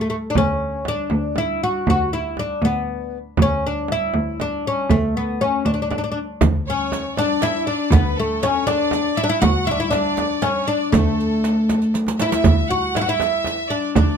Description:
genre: Persian modal ensemble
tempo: 80 BPM (dotted quarters)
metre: 6/8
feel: straight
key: D dastgah mahur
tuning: A4 = 439 Hz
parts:
  - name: oud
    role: melody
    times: 0.0-14.2 s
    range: A3 to F#4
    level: -20 LUFS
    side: left 2 dB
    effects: none
  - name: clear cello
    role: bass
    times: 0.0-14.2 s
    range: D2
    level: -23 LUFS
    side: right 1 dB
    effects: none
  - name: frame drum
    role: percussion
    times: 0.4-14.1 s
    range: none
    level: -23 LUFS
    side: right 5 dB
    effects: none
  - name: riq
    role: percussion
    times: 6.4-14.1 s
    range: none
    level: -31 LUFS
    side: right 7 dB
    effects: none
  - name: tombak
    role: percussion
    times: 6.4-14.1 s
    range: none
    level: -22 LUFS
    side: right 2 dB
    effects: none
  - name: rich studio violin section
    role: second line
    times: 6.7-14.2 s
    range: A4 to F#5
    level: -26 LUFS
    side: right 2 dB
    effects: none
room: light reverb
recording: close, detailed microphones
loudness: -17 LUFS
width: side -7 dB against mid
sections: 0.0-6.4 A section; 6.4-14.2 B section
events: drum fill 11.9-12.4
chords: none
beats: | 0.36 1.12 | 1.88 2.63 | 3.39 4.15 | 4.90 5.66 | 6.41 7.17 | 7.92 8.67 | 9.43 10.18 | 10.94 11.69 | 12.45 13.20 | 13.96

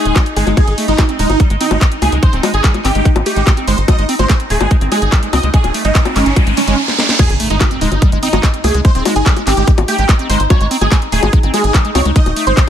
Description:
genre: psychedelic trance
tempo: 145 BPM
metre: 4/4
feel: straight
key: Ab major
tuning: A4 = 441 Hz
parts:
  - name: dense compressed supersaw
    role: melody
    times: 0.0-12.6 s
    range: Db4 to Eb5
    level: -18 LUFS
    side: right 2 dB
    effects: phaser, vintage 12-bit sampler grit, sidechain pumping, tape echo
  - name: overtone-sweeping drone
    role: sustained chords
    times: 0.0-12.7 s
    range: Eb4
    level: -23 LUFS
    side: left 1 dB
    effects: chorus, built-in reverb, phaser, sidechain pumping
  - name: liquid acid bass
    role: riff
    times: 0.0-12.6 s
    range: G3 to C4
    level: -20 LUFS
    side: moving between left 2 dB and right 4 dB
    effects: chorus, auto-pan, sidechain pumping, tape echo
  - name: tight sequencer bass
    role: bass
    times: 0.1-12.5 s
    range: Eb1 to Db2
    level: -16 LUFS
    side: equal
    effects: none
  - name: garage drum kit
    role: drums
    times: 0.1-12.7 s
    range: bongos, crash cymbal, handclaps, hi-hat, snare drum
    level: -19 LUFS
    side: left 3 dB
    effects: none
  - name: electronic kick drum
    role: drums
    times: 0.2-12.7 s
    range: none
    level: -11 LUFS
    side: equal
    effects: none
  - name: riser and impact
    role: sound effects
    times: 4.7-8.8 s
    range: none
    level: -22 LUFS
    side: right 1 dB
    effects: none
room: little or no reverb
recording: none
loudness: -10 LUFS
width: side -10 dB against mid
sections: 0.0-7.2 A section; 7.2-12.7 B section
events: riser 4.7-7.2; drum fill 6.9-7.2; drop 7.2-12.7; impact 7.2-8.8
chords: 0.0 Ab5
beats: 0.16 | 0.57 0.98 1.40 1.81 | 2.23 2.64 3.05 3.47 | 3.88 4.30 4.71 5.12 | 5.54 5.95 6.37 6.78 | 7.19 7.61 8.02 8.43 | 8.85 9.26 9.68 10.09 | 10.50 10.92 11.33 11.74 | 12.16 12.57

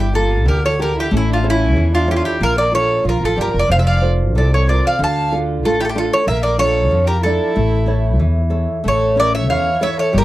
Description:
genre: greek folk, Greek bouzouki band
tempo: 93 BPM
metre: 2/4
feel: straight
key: A phrygian dominant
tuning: A4 = 440 Hz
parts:
  - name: Greek bouzouki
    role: melody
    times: 0.0-10.2 s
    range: E4 to A5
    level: -17 LUFS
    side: equal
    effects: none
  - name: warm violin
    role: second line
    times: 0.0-10.2 s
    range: C#4 to F5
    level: -24 LUFS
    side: right 5 dB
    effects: none
  - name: nylon-string guitar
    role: accompaniment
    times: 0.0-10.2 s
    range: C3 to D5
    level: -22 LUFS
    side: equal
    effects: none
  - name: upright bass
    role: bass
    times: 0.0-10.2 s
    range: F1 to F2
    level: -18 LUFS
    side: equal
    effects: none
room: little or no reverb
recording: dry, close 1970s-style studio recording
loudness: -14 LUFS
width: side -16 dB against mid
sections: 0.0-8.9 A section; 8.9-10.2 B section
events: none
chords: 0.0 Gmadd9; 1.1 A; 2.4 Bb; 3.7 F; 5.0 Dm; 6.3 Bb; 7.6 A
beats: 0.46 | 1.11 1.76 | 2.40 3.05 | 3.70 4.34 | 4.99 5.63 | 6.28 6.92 | 7.57 8.21 | 8.86 9.50 | 10.14

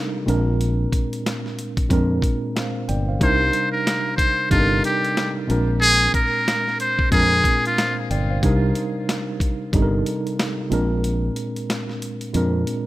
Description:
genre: hip hop, boom-bap hip-hop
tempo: 92 BPM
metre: 4/4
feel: swing 60% on 16ths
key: unclear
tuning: A4 = 441 Hz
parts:
  - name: mellow tine electric piano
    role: accompaniment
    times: 0.0-12.9 s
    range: Bb2 to G5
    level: -24 LUFS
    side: right 1 dB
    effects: medium stereo tremolo
  - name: fingered electric bass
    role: bass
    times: 0.3-12.6 s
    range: G1 to F2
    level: -21 LUFS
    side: equal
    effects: none
  - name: dusty soul sampler-style drum kit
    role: drums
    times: 0.3-12.9 s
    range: hi-hat, kick drum, snare drum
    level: -24 LUFS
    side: equal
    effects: none
  - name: trumpet with metal mute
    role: melody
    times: 3.2-8.0 s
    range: F4 to C5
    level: -19 LUFS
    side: equal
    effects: ping-pong delay
room: little or no reverb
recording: rough home demo mix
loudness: -18 LUFS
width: side -16 dB against mid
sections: 0.0-12.9 A section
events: kick muted 11.0-12.9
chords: 0.3 Bb9; 3.2 Cm9; 5.5 Bb9; 8.4 Cm9; 10.7 Bb9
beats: | 0.60 1.25 1.91 2.56 | 3.21 3.86 4.52 5.17 | 5.82 6.47 7.12 7.78 | 8.43 9.08 9.73 10.39 | 11.04 11.69 12.34

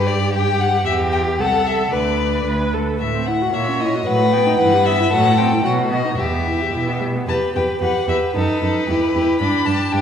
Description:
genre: quick classical-period movement for string quartet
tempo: 113 BPM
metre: 2/4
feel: straight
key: G major, E minor from 3.0 s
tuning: A4 = 442 Hz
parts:
  - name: rich violin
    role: melody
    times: 0.0-10.0 s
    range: B4 to B5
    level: -21 LUFS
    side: left 6 dB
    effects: none
  - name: clear violin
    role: second line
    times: 0.0-10.0 s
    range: F#4 to C#5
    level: -23 LUFS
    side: left 1 dB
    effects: none
  - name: rich viola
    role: accompaniment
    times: 0.0-10.0 s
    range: E3 to B4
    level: -22 LUFS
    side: right 1 dB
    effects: none
  - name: rich cello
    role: bass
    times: 0.0-10.0 s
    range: C2 to B2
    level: -21 LUFS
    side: right 2 dB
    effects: none
room: wet scoring stage reverb, RT60 1.7 s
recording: recorded in a church or concert hall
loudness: -16 LUFS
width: side -8 dB against mid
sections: 0.0-7.3 A section; 7.3-10.0 B section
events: none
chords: 0.0 Gmaj7(no3); 0.9 Em; 1.4 Am/C; 1.9 Bm/D; 2.5 D5; 3.0 F#m7b5/A; 3.5 F#7/A#; 4.1 B7/A; 4.6 Em/G; 5.1 F#m7b5/A; 5.7 B7; 6.2 Em; 8.4 B7; 8.9 Em; 9.4 G5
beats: 0.34 | 0.87 1.40 | 1.93 2.47 | 3.01 3.54 | 4.08 4.60 | 5.13 5.66 | 6.20 6.75 | 7.29 7.83 | 8.36 8.88 | 9.41 9.93

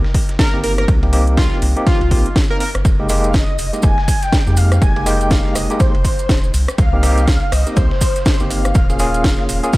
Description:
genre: deep house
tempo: 122 BPM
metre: 4/4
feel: swing 59% on 16ths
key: F minor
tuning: A4 = 440 Hz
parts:
  - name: tine electric piano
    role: stabs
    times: 0.0-9.8 s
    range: Ab3 to Bb4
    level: -22 LUFS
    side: equal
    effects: overdrive, medium tremolo, sidechain pumping
  - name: dusty soul sampler-style drum kit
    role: drums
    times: 0.0-9.8 s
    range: ride cymbal, snare drum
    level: -33 LUFS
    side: right 2 dB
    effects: high-pass filter on cymbals, high-pass filter on snare
  - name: electronic kick drum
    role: drums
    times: 0.1-9.8 s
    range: none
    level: -16 LUFS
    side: equal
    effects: overdrive
  - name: house drum kit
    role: drums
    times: 0.1-9.8 s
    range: hi-hat, rim click, snare drum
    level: -23 LUFS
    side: equal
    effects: overdrive
  - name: plucky unison lead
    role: melody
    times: 0.4-2.7 s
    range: F4 to Bb4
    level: -23 LUFS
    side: equal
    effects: analog delay
  - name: round analog bass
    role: bass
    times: 0.5-9.6 s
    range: Eb1 to F2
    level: -18 LUFS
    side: equal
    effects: sidechain pumping
  - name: maracas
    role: percussion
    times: 2.9-9.8 s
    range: none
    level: -30 LUFS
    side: right 2 dB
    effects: none
  - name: breathy flute-like synth lead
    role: melody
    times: 3.3-9.8 s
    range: C5 to Ab5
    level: -23 LUFS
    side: equal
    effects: tremolo, ensemble chorus, tape echo
room: little or no reverb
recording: none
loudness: -13 LUFS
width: side -19 dB against mid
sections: 0.0-9.8 A section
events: none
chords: 0.0 Cm7; 2.9 Fm11; 6.8 Cm7; 8.8 Eb9sus4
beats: 0.39 | 0.88 1.37 1.87 2.36 | 2.85 3.34 3.83 4.33 | 4.82 5.31 5.80 6.29 | 6.78 7.28 7.77 8.26 | 8.75 9.24 9.73

